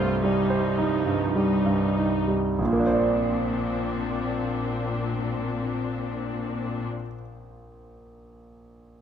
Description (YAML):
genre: cinematic, emotional film score for orchestra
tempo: 48-56 BPM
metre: 3/4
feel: rubato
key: Bb major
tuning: A4 = 440 Hz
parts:
  - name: clear concert grand piano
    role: accompaniment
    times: 0.0-9.0 s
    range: Bb1 to D5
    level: -25 LUFS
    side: right 2 dB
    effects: none
  - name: rich studio viola section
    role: accompaniment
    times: 0.0-6.9 s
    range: F3 to F4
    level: -31 LUFS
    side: left 4 dB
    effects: none
  - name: rich studio cello section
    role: bass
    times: 0.0-6.9 s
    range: C2 to Bb2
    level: -30 LUFS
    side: left 1 dB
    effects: none
room: moderate scoring stage reverb, RT60 1.6 s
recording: dark, warm production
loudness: -23 LUFS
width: side -8 dB against mid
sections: 0.0-2.6 A section; 2.6-6.3 B section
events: slowing down 0.0-2.6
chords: 0.0 Cm; 2.6 Bbadd9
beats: 0.23 1.36 | 2.59 3.83 5.06